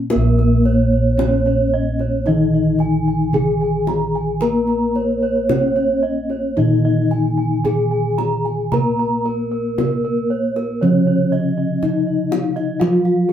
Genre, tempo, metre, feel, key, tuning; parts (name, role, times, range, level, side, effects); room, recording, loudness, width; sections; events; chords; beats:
Javanese gamelan; 57 BPM; 4/4; uneven beats; Bb slendro; A4 = 444 Hz
gamelan-type bronze metallophone; melody; 0.0-13.3 s; Bb3 to Bb4; -21 LUFS; left 3 dB
gamelan-type bronze metallophone; accompaniment; 0.0-13.3 s; Db3-45c to Bb3; -21 LUFS; left 1 dB
gamelan-type bossed gongs; bass; 0.0-13.3 s; Bb1 to Bb4; -21 LUFS; right 1 dB
gamelan-type bronze metallophone; arpeggios; 0.1-13.3 s; Ab4-25c to Bb5; -23 LUFS; right 5 dB
kendang; percussion; 0.1-13.3 s; -26 LUFS; left 1 dB
moderate studio reverb, RT60 0.5 s; band playing live in one room; -15 LUFS; side -10 dB against mid
0.1-13.3 A section
| 0.12 1.19 2.27 3.35 | 4.42 5.50 6.57 7.65 | 8.73 9.79 10.82 11.83 | 12.81